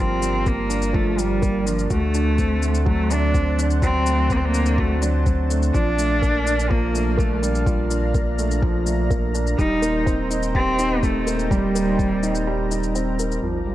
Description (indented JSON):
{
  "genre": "piano and strings electronica",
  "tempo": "125 BPM",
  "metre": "4/4",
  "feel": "straight",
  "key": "unclear",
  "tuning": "A4 = 440 Hz",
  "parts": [
    { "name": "warm cello", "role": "melody", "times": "0.0-12.9 s", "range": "F3 to Eb4", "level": "-24 LUFS", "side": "equal", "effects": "none" },
    { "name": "lush unison pad", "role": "sustained chords", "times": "0.0-13.7 s", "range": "D4 to Bb5", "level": "-32 LUFS", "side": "left 1 dB", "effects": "chorus, sidechain pumping" },
    { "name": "dark concert grand piano", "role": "riff", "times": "0.0-13.7 s", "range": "F3 to Bb4", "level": "-25 LUFS", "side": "right 2 dB", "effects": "tape echo" },
    { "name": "warm sub bass", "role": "bass", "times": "0.0-13.7 s", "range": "Eb1 to D2", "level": "-23 LUFS", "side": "equal", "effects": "sidechain pumping" },
    { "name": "shaker", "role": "drums", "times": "0.2-13.4 s", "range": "none", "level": "-33 LUFS", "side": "left 5 dB", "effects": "overdrive, low-pass filter on perc" },
    { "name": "electronic kick drum", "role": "drums", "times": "0.5-12.1 s", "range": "none", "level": "-22 LUFS", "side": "equal", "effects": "overdrive" },
    { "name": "sub drop", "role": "sound effects", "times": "13.4-13.7 s", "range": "none", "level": "-30 LUFS", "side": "equal", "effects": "none" }
  ],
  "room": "light reverb",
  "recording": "dark, warm production",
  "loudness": "-18 LUFS",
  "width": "side -14 dB against mid",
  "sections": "0.0-13.4 A section",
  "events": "break 12.5-13.4; impact 13.4-13.7",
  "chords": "0.0 Gm7; 1.9 D7; 5.7 Bbmaj7; 9.6 Eb6",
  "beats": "0.47 0.95 1.43 | 1.91 2.39 2.87 3.35 | 3.83 4.31 4.79 5.27 | 5.75 6.23 6.71 7.19 | 7.67 8.15 8.63 9.11 | 9.59 10.07 10.55 11.03 | 11.51 11.99 12.47 12.95 | 13.43"
}